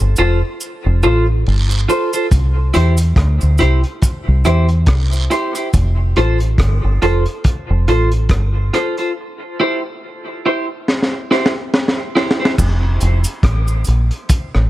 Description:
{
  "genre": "dub reggae",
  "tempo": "70 BPM",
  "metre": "4/4",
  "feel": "swing 57% on 16ths",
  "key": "F major",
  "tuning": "A4 = 439 Hz",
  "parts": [
    { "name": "deep dub fingered electric bass", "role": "bass", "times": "0.0-14.7 s", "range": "F1 to E2", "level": "-13 LUFS", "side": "equal", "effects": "none" },
    { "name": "semi-hollow electric guitar", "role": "accompaniment", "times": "0.2-12.5 s", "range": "E4 to C5", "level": "-19 LUFS", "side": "right 1 dB", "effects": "wide subtle chorus, dub echo" },
    { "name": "cabasa and guiro", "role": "percussion", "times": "0.2-6.0, 12.6-14.5 s", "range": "none", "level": "-28 LUFS", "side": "right 3 dB", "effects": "none" },
    { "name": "crunchy breakbeat drum kit", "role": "drums", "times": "2.3-14.7 s", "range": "crash cymbal, hi-hat, kick drum, rim click, snare drum", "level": "-17 LUFS", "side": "equal", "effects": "none" }
  ],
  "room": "little or no reverb",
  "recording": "none",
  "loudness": "-13 LUFS",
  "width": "side -15 dB against mid",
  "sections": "0.0-12.6 A section; 12.6-14.7 B section",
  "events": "break 0.0-2.3, 5.7-12.6; drum fill 10.9-12.6",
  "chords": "0.0 F; 2.3 C; 5.7 F; 9.2 C; 12.6 F",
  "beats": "0.61 1.46 | 2.32 3.17 4.03 4.88 | 5.74 6.59 7.45 8.30 | 9.16 10.02 10.87 11.73 | 12.58 13.44 14.29"
}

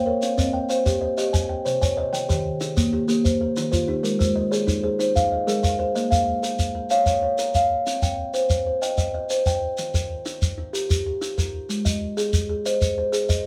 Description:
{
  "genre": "southern african traditional, mbira-style interlocking cycle",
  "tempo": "126 BPM (dotted quarters)",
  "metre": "12/8",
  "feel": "straight",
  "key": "Bb dorian",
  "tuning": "A4 = 440 Hz",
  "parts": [
    { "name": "kalimba", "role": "arpeggios", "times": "0.0-13.5 s", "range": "Eb3 to Ab5", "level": "-26 LUFS", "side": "equal", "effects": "none" },
    { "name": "kalimba", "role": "arpeggios", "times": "0.0-6.3 s", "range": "C3 to Ab5", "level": "-28 LUFS", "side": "equal", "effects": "none" },
    { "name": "shekere", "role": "percussion", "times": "0.2-13.4 s", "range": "none", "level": "-27 LUFS", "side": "equal", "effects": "none" }
  ],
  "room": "wet studio reverb, RT60 0.5 s",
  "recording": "band playing live in one room",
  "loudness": "-23 LUFS",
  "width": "mono",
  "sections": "0.0-6.0 A section; 6.0-13.5 B section",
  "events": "none",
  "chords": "0.2 Cm; 2.1 Eb; 4.0 Ab; 6.0 Bbm; 7.9 Cm; 9.8 Eb; 11.7 Ab",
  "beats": "| 0.22 0.70 1.18 1.66 | 2.13 2.61 3.09 3.57 | 4.04 4.52 5.00 5.48 | 5.95 6.43 6.91 7.39 | 7.87 8.34 8.82 9.30 | 9.78 10.26 10.74 11.22 | 11.70 12.18 12.65 13.13"
}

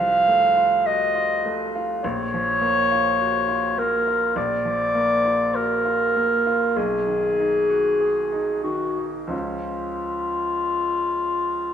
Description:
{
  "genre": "classical, romantic duo for clarinet and grand piano",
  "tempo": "43-52 BPM",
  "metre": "4/4",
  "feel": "rubato",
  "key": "unclear",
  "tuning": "A4 = 440 Hz",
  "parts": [
    { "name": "mellow clarinet", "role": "melody", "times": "0.0-11.7 s", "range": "E#4 to F5", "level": "-20 LUFS", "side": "equal", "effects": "none" },
    { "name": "bright grand piano", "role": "accompaniment", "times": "0.0-11.7 s", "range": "A#1 to G#4", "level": "-27 LUFS", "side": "equal", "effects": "none" }
  ],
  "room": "wet scoring stage reverb, RT60 1.7 s",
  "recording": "none",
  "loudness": "-19 LUFS",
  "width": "side -9 dB against mid",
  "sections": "0.0-11.7 A section",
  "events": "none",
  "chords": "0.0 F/C; 2.0 A#m; 6.8 B; 9.3 C#",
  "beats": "0.86 2.03 3.19 | 4.36 5.54 6.76 8.00 | 9.32 10.70"
}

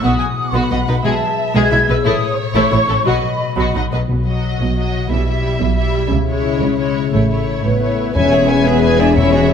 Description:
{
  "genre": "cinematic",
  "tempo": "119 BPM (dotted quarters)",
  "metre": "6/8",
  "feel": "straight",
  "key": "B mixolydian",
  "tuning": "A4 = 440 Hz",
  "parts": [
    { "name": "rich symphonic violin section", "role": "melody", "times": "0.0-9.5 s", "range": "E4 to G#5", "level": "-24 LUFS", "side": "left 3 dB", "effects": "none" },
    { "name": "dark symphonic violin section", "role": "second line", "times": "0.0-9.5 s", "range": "E4 to G#5", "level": "-24 LUFS", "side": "left 1 dB", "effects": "none" },
    { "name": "large flute ensemble", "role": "second line", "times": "0.0-3.9, 7.6-9.5 s", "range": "B4 to G#6", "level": "-21 LUFS", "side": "equal", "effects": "none" },
    { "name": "rich symphonic viola section", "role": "accompaniment", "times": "0.0-9.5 s", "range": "F#3 to G#4", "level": "-23 LUFS", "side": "right 1 dB", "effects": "none" },
    { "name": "concert harp", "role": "arpeggios", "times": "0.0-9.5 s", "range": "E2 to E5", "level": "-20 LUFS", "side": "left 9 dB", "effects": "none" },
    { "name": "rich symphonic cello section", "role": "bass", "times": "0.0-9.5 s", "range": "E2 to C#3", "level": "-22 LUFS", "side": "right 3 dB", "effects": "none" },
    { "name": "rich symphonic double bass section", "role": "bass", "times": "0.0-9.5 s", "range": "E1 to C#2", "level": "-20 LUFS", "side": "right 3 dB", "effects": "none" },
    { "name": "timpani", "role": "percussion", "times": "1.0-1.5, 4.1-4.6, 8.2-9.5 s", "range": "E2 to B2", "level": "-22 LUFS", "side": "left 1 dB", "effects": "none" },
    { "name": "warm clarinet", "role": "second line", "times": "7.6-9.5 s", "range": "B4 to D5", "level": "-22 LUFS", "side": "left 1 dB", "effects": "none" },
    { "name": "mellow French horn section", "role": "sustained chords", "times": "7.6-9.5 s", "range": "B3 to D4", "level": "-17 LUFS", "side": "left 4 dB", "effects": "none" }
  ],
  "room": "moderate concert hall reverb, RT60 2.0 s",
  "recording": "none",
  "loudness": "-13 LUFS",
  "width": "side -7 dB against mid",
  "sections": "0.0-4.1 A section; 4.1-8.2 B section; 8.2-9.5 C section",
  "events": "none",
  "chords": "0.0 B; 1.0 E/B; 2.0 A; 3.1 B; 5.1 Em/B; 6.1 C#m; 7.1 A; 8.2 E",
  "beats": "| 0.04 0.54 | 1.05 1.55 | 2.05 2.56 | 3.06 3.58 | 4.09 4.60 | 5.10 5.61 | 6.11 6.61 | 7.12 7.64 | 8.15 8.66 | 9.16"
}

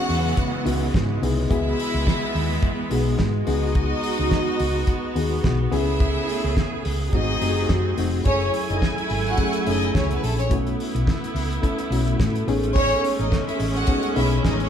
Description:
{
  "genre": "disco",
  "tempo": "107 BPM",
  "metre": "4/4",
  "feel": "swing 56% on 16ths",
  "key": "unclear",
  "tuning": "A4 = 439 Hz",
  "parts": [
    { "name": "clear chamber string section", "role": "second line", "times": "0.0-14.7 s", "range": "A3 to F#5", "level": "-27 LUFS", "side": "equal", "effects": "none" },
    { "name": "reed electric piano", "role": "accompaniment", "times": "0.0-14.7 s", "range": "G#3 to A4", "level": "-27 LUFS", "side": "left 4 dB", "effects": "fast tremolo" },
    { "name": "clear studio string section", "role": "sustained chords", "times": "0.0-14.7 s", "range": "C#3 to G#5", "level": "-27 LUFS", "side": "right 2 dB", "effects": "none" },
    { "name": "hollow-body short-scale fingered electric bass", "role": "bass", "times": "0.1-14.7 s", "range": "E#1 to A2", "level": "-25 LUFS", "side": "equal", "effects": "none" },
    { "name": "damped 70s drum kit", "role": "drums", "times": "0.1-14.7 s", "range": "hi-hat, kick drum, snare drum", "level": "-25 LUFS", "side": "equal", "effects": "none" }
  ],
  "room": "moderate large studio reverb, RT60 1.1 s",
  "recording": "band playing live in one room",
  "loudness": "-20 LUFS",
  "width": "side -8 dB against mid",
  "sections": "0.0-8.3 A section; 8.3-14.7 B section",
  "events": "none",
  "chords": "0.0 C#m7; 1.5 Emaj7/C#; 3.5 G#m7/C#; 5.7 Amaj7/C#; 7.1 G#7b9; 8.3 F#m9; 10.5 B7sus4; 12.5 Amaj9#11",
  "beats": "0.38 0.94 | 1.50 2.06 2.63 3.19 | 3.75 4.32 4.88 5.44 | 6.01 6.57 7.13 7.70 | 8.26 8.82 9.38 9.95 | 10.51 11.07 11.64 12.20 | 12.76 13.32 13.89 14.45"
}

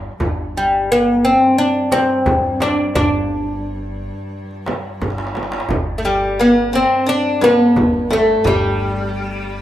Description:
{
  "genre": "Arabic maqam ensemble",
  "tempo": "87 BPM",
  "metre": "4/4",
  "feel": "straight",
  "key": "G maqam rast",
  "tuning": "A4 = 440 Hz",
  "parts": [
    { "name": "upright bass", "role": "bass", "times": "0.0-9.6 s", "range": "G1", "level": "-27 LUFS", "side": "equal", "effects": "none" },
    { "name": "dark cello", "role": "drone", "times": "0.0-9.6 s", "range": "G2", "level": "-32 LUFS", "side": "equal", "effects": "stereo widening" },
    { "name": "darbuka", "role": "percussion", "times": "0.2-9.1 s", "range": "none", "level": "-25 LUFS", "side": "right 1 dB", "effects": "none" },
    { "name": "frame drum", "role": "percussion", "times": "0.2-8.6 s", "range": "none", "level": "-23 LUFS", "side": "right 1 dB", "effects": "none" },
    { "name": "oud", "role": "melody", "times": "0.6-9.6 s", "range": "G3 to D4", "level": "-15 LUFS", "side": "equal", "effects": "plate reverb" },
    { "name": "metal-body resonator slide guitar", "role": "second line", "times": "6.0-9.6 s", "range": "G3 to D4", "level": "-20 LUFS", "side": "left 2 dB", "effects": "plate reverb" }
  ],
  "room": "wet small room reverb, RT60 0.6 s",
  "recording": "rough home demo mix, lossy compression artefacts",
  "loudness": "-14 LUFS",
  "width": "side -12 dB against mid",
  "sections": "0.0-9.6 A section",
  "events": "drum fill 5.0-5.7",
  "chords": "none",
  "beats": "| 0.20 0.89 1.58 2.27 | 2.95 3.64 4.33 5.01 | 5.70 6.39 7.08 7.76 | 8.45 9.14"
}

